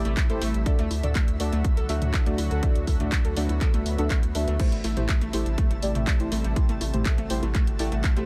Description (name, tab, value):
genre	progressive house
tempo	122 BPM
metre	4/4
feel	straight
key	A dorian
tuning	A4 = 440 Hz
part	lush unison pad	sustained chords	0.0-8.3 s	C3 to F#4	-38 LUFS	equal	chorus, sidechain pumping
part	deep mellow chord stab	stabs	0.0-8.3 s	A3 to E5	-34 LUFS	equal	chorus, sidechain pumping, tape echo
part	round analog bass	bass	0.0-8.3 s	G1 to D2	-30 LUFS	equal	sidechain pumping
part	twinkling granular texture	texture	0.0-8.3 s	E4 to A5	-46 LUFS	equal	built-in reverb, sidechain pumping
part	soft round pluck	arpeggios	0.1-8.2 s	A3 to A4	-35 LUFS	equal	lush chorus, sidechain pumping, tape echo
part	house drum kit	drums	0.1-8.3 s	crash cymbal, handclaps, hi-hat	-36 LUFS	equal	none
part	electronic kick drum	drums	0.2-8.1 s	none	-25 LUFS	equal	none
part	electronic congas and toms	percussion	0.7-7.5 s	none	-39 LUFS	equal	none
room	little or no reverb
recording	none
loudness	-25 LUFS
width	mono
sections	0.0-8.3 A section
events	none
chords	0.0 Am7; 0.7 D; 4.6 Am7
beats	0.17 | 0.66 1.15 1.65 2.14 | 2.63 3.12 3.61 4.11 | 4.60 5.09 5.58 6.07 | 6.56 7.06 7.55 8.04